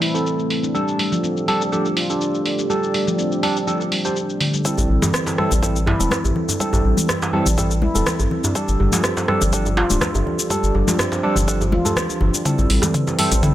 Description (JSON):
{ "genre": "afro house", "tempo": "123 BPM", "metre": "4/4", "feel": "swing 53% on 16ths", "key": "unclear", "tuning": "A4 = 440 Hz", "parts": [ { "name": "dark analog pad", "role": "sustained chords", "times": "0.0-13.5 s", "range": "A3 to D6", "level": "-30 LUFS", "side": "left 2 dB", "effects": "chorus, sidechain pumping" }, { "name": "handpan", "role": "arpeggios", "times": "0.0-13.5 s", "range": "D3 to F4", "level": "-23 LUFS", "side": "equal", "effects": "sidechain pumping, low-pass filter, digital delay" }, { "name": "afro-pop drum kit", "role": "drums", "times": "0.0-13.5 s", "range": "cabasa, hi-hat, rim click, toms", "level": "-23 LUFS", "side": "left 1 dB", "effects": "low-pass filter on perc, low-pass filter on hats, low-pass filter on snare, low-pass filter on toms" }, { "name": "overdriven tine electric piano", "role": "stabs", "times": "0.1-13.5 s", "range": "C4 to C5", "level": "-23 LUFS", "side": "right 2 dB", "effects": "analog chorus, sidechain pumping, digital delay" }, { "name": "electronic kick drum", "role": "drums", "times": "4.7-13.5 s", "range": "none", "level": "-31 LUFS", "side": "equal", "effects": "none" }, { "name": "round analog bass", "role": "bass", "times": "4.8-13.5 s", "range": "D1 to A1", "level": "-20 LUFS", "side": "equal", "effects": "sidechain pumping" }, { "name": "congas", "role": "percussion", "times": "4.8-13.4 s", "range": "none", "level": "-27 LUFS", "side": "left 3 dB", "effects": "none" }, { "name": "djembe", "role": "percussion", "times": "4.8-13.5 s", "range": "none", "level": "-26 LUFS", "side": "right 1 dB", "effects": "none" } ], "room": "light reverb", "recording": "none", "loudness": "-17 LUFS", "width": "side -13 dB against mid", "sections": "0.0-4.7 A section; 4.7-13.5 B section", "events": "filter sweep on handpan 0.0-4.7, 4.7-13.5; filter sweep on tine electric piano 0.0-4.7; filter sweep on analog synth pad 0.0-4.7; build-up 4.7-13.5; drum fill 12.5-13.5", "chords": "0.0 Am; 0.7 Gsus2; 4.7 Am; 8.6 Gsus2; 12.5 Am", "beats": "0.26 | 0.75 1.24 1.72 2.21 | 2.70 3.19 3.67 4.16 | 4.65 5.14 5.63 6.11 | 6.60 7.09 7.58 8.06 | 8.55 9.04 9.53 10.02 | 10.50 10.99 11.48 11.97 | 12.46 12.94 13.43" }